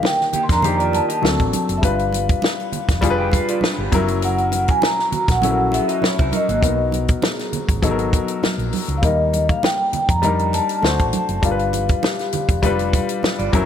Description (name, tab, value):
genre	lush 1970s-style soul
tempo	100 BPM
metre	4/4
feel	swing 54% on 16ths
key	unclear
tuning	A4 = 440 Hz
part	vibraphone with soft mallets	melody	0.0-13.5 s	Eb5 to C6	-22 LUFS	equal	none
part	warm grand piano	accompaniment	0.0-13.7 s	D3 to C5	-23 LUFS	left 4 dB	none
part	congas	percussion	0.0-13.7 s	none	-29 LUFS	right 7 dB	none
part	vibraphone with medium hard mallets	texture	0.0-7.9, 12.0-12.7 s	F4 to Bb4	-34 LUFS	right 1 dB	none
part	compact cocktail drum kit	drums	0.1-13.7 s	hi-hat, kick drum, snare drum	-21 LUFS	equal	none
part	electric guitar through a small old amp	riff	0.3-6.8, 13.4-13.7 s	Bb3 to G5	-27 LUFS	right 7 dB	wide subtle chorus
part	hollow-body short-scale fingered electric bass	bass	0.3-13.7 s	F1 to F2	-24 LUFS	right 1 dB	none
room	light reverb, small room ambience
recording	none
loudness	-16 LUFS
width	side -9 dB against mid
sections	0.0-13.7 A section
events	none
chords	0.0 Ebmaj7; 1.2 D7; 1.8 G7; 3.9 Gb7; 6.6 Bmaj7; 9.0 Ebmaj7; 10.8 D7; 11.4 G7